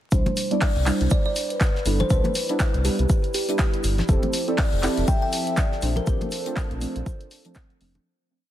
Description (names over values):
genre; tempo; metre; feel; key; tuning
deep house; 121 BPM; 4/4; swing 58% on 16ths; C major; A4 = 440 Hz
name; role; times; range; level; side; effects
vibraphone with soft mallets; melody; 0.1-7.5 s; A4 to E5; -31 LUFS; left 2 dB; ping-pong delay
deep mellow chord stab; stabs; 0.1-8.0 s; B2 to A4; -28 LUFS; right 2 dB; chorus, sidechain pumping, digital delay
round analog bass; bass; 0.1-8.0 s; F1 to C2; -24 LUFS; equal; sidechain pumping
damped 70s drum kit; drums; 0.1-7.7 s; hi-hat, shaker, snare drum; -38 LUFS; left 1 dB; sidechain pumping on hats, high-pass filter on hats, high-pass filter on snare, sidechain pumping on perc, high-pass filter on perc, high-pass filter on room
electronic kick drum; drums; 0.1-7.7 s; none; -22 LUFS; equal; none
punchy analog drum machine; drums; 0.1-8.0 s; handclaps, hi-hat; -30 LUFS; equal; none
warbly tape-like pad; texture; 1.3-8.1 s; F3 to B5; -39 LUFS; right 4 dB; chorus, built-in reverb, sidechain pumping
congas; percussion; 0.3-8.0 s; none; -29 LUFS; left 2 dB; none
kalimba; melody; 1.1-6.2 s; G4 to G5; -31 LUFS; right 1 dB; ping-pong delay
warm analog pad; sustained chords; 4.1-8.0 s; C4 to A4; -35 LUFS; right 1 dB; chorus, sidechain pumping
room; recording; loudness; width
studio ambience; dense, heavily limited modern master, vinyl crackle; -20 LUFS; side -12 dB against mid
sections
0.1-8.1 groove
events
fade-in on ambient pad 0.1-8.1; fade-out 5.4-8.1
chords
0.1 Cmaj9; 4.1 Fmaj9; 5.8 Bbmaj9